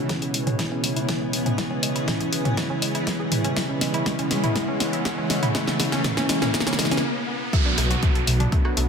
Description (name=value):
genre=melodic techno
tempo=121 BPM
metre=4/4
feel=straight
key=unclear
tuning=A4 = 437 Hz
part: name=soft octave-layered synth lead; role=melody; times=0.0-8.9 s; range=D4 to F#4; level=-32 LUFS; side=left 3 dB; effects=chorus, sidechain pumping, ping-pong delay
part: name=big bright polysynth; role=second line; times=0.0-8.9 s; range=D3 to F#3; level=-32 LUFS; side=right 1 dB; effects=analog chorus, sidechain pumping, ping-pong delay
part: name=evolving wavetable pad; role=sustained chords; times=0.0-8.9 s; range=B2 to A5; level=-36 LUFS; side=left 2 dB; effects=chorus, built-in reverb, vintage 12-bit sampler grit, sidechain pumping
part: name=woody wave-folded pluck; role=arpeggios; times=0.0-8.8 s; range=G#3 to A5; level=-32 LUFS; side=equal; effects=chorus, cassette tape, sidechain pumping, ping-pong delay
part: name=brassy analog pad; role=stabs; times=0.0-8.9 s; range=B2 to C#4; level=-30 LUFS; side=right 2 dB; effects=chorus, cassette tape, sidechain pumping, ping-pong delay
part: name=analog drone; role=drone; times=0.0-7.0 s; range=B2 to B3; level=-39 LUFS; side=left 1 dB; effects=none
part: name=riser and downlifter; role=sound effects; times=0.9-8.9 s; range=none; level=-31 LUFS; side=equal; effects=none
part: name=warbly tape-like pad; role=texture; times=0.0-8.9 s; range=B3 to A5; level=-34 LUFS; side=right 1 dB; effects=chorus, built-in reverb, sidechain pumping
part: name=deep house drum kit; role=drums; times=0.1-8.9 s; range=hi-hat, rim click, snare drum, toms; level=-26 LUFS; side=equal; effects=none
part: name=electronic kick drum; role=drums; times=0.1-8.6 s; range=none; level=-25 LUFS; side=equal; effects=high-pass filter on kick, high-pass filter on room
part: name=dark detuned saw bass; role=bass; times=7.8-8.9 s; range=B1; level=-22 LUFS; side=equal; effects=sidechain pumping
room=moderate digital room reverb, RT60 1.1 s, digital ambience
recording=none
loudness=-21 LUFS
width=side -6 dB against mid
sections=0.0-7.5 A section; 7.5-8.9 B section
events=build-up 0.0-7.5; drum fill 0.0-7.0; filter sweep on synth pluck 0.0-7.5; filter sweep on analog synth pad 0.0-7.5; riser 0.9-7.5; stop 7.0-7.5; drop 7.5-8.9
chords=0.0 C#m7/B; 7.5 Bm7